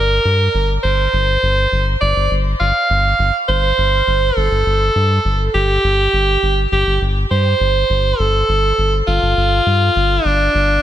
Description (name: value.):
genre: synthwave.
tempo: 102 BPM.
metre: 4/4.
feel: straight.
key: G minor.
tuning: A4 = 439 Hz.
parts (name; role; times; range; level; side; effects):
edgy alto saxophone; melody; 0.0-10.8 s; D4 to F5; -15 LUFS; right 2 dB; vintage 12-bit sampler grit, shimmer reverb, digital delay.
round analog bass; bass; 0.0-10.8 s; G1 to G2; -17 LUFS; left 1 dB; tube saturation.
room: moderate plate reverb, RT60 3.0 s.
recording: dense, heavily limited modern master.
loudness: -13 LUFS.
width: side -11 dB against mid.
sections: 0.0-10.8 A section.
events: none.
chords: 0.0 G5.